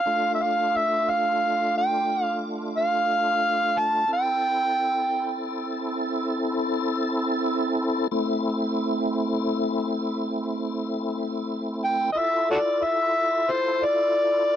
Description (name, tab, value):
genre	blues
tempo	60 BPM (dotted quarters)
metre	12/8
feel	straight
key	A minor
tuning	A4 = 440 Hz
part	overdriven harmonica	melody	0.0-5.4, 11.8-14.6 s	F#4 to A5	-22 LUFS	equal	none
part	tonewheel organ	sustained chords	0.1-14.6 s	A3 to A4	-26 LUFS	equal	slow rotary speaker, chorus vibrato
room	light reverb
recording	dry, close 1970s-style studio recording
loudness	-22 LUFS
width	side -10 dB against mid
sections	0.0-14.6 A section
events	none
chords	0.0 Dm; 4.1 Am; 12.1 Fmaj7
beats	| 0.05 1.06 2.07 3.07 | 4.08 5.09 6.10 7.11 | 8.12 9.13 10.13 11.14 | 12.15 13.15 14.16